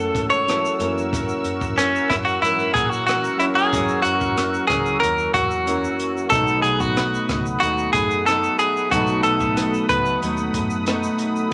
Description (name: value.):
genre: indie pop, bedroom pop.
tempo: 92 BPM.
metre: 4/4.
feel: straight.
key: unclear.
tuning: A4 = 442 Hz.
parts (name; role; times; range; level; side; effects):
direct-recorded clean electric guitar; melody; 0.0-10.2 s; C#4 to C#5; -22 LUFS; equal; none.
picked steel-string acoustic guitar; accompaniment; 0.0-11.5 s; F#2 to D#4; -30 LUFS; equal; warbly pitch drift.
soft electric-piano-like synth keys; accompaniment; 0.0-11.5 s; E3 to A#4; -30 LUFS; equal; chorus, tremolo.
lush unison pad; sustained chords; 0.0-11.5 s; A3 to E6; -31 LUFS; equal; chorus, phaser.
vintage muted fingered electric bass; bass; 0.0-11.1 s; B1 to A#2; -34 LUFS; equal; none.
compact cocktail drum kit; drums; 0.1-11.5 s; hi-hat, kick drum, rim click, shaker; -31 LUFS; equal; none.
room: wet studio reverb, RT60 0.9 s.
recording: none.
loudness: -20 LUFS.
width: mono.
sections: 0.0-11.5 A section.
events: clean electric guitar solo 0.0-11.5.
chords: 0.0 F#m7; 0.8 F#7; 6.3 B7.